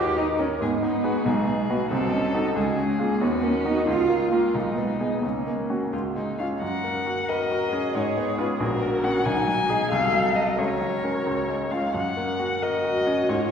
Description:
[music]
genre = quick classical-period movement for piano trio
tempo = 90 BPM (dotted quarters)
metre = 6/8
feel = rubato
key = F# major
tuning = A4 = 441 Hz
[part]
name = muted violin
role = melody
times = 0.0-13.5 s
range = C#4 to G#5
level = -28 LUFS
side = left 3 dB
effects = none
[part]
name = muted cello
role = second line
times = 0.0-13.5 s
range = G#3 to B4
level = -26 LUFS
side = right 2 dB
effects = none
[part]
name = bright grand piano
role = accompaniment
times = 0.0-13.5 s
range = A#1 to Db5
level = -25 LUFS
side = left 1 dB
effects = none
[sound]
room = wet concert hall reverb, RT60 1.9 s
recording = heard from further back in the room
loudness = -22 LUFS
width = side -7 dB against mid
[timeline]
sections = 0.0-6.6 A section; 6.6-13.5 B section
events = none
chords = 0.0 Eb5; 0.6 Abm; 1.3 G#m7/B; 1.9 Cdim7; 2.6 C#; 3.2 D#m; 3.9 A#m/C#; 4.5 G#m/B; 5.2 F#/C#; 5.9 C#; 6.6 F#; 7.9 C#7/G#; 8.6 F#/A#; 9.3 G#m7/B; 9.9 Cdim7; 10.6 F#/C#; 11.3 C#; 11.9 F#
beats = 0.60 | 1.26 1.91 | 2.56 3.21 | 3.87 4.54 | 5.23 5.93 | 6.62 7.29 | 7.95 8.60 | 9.25 9.91 | 10.58 11.26 | 11.94 12.62 | 13.29

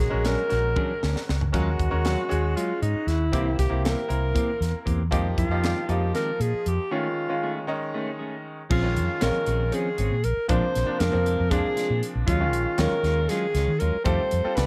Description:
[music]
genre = electric jazz fusion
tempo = 235 BPM (eighths)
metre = 7/8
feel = straight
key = Bb minor from 8.7 s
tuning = A4 = 440 Hz
[part]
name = breathy alto saxophone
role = melody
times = 0.0-14.7 s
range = Eb4 to C5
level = -29 LUFS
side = equal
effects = none
[part]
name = bright concert grand piano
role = accompaniment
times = 0.0-14.7 s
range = C3 to Bb4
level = -33 LUFS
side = equal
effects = none
[part]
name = mellow fretless electric bass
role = bass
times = 0.0-14.7 s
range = Ab1 to Eb3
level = -28 LUFS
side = equal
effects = none
[part]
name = crisp fusion drum kit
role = drums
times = 0.0-14.7 s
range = crash cymbal, hi-hat, kick drum, snare drum, splash cymbal, toms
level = -32 LUFS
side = equal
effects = none
[part]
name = clean electric guitar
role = stabs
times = 0.2-14.7 s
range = Eb3 to Ab4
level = -34 LUFS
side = equal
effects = subtle chorus
[sound]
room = light reverb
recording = none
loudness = -25 LUFS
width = mono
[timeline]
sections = 0.0-8.7 A section; 8.7-14.7 B section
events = drum fill 0.8-1.5; break 6.9-8.7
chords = 0.0 Bb7alt; 1.5 Ebm11; 3.3 C7; 5.1 Fm9; 6.9 F7alt; 8.7 Bbm9; 10.5 Bb7; 12.3 Ebm11; 14.1 F9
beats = 0.00 0.25 0.51 0.77 1.02 1.28 | 1.54 1.79 2.05 2.31 2.56 2.82 3.08 | 3.33 3.59 3.85 4.10 4.36 4.61 4.87 | 5.13 5.38 5.64 5.89 6.15 6.41 6.66 | 6.92 7.17 7.43 7.68 7.94 8.20 8.45 | 8.71 8.96 9.22 9.47 9.73 9.98 10.24 | 10.49 10.75 11.00 11.26 11.51 11.77 12.02 | 12.28 12.53 12.79 13.04 13.30 13.55 13.81 | 14.06 14.32 14.57

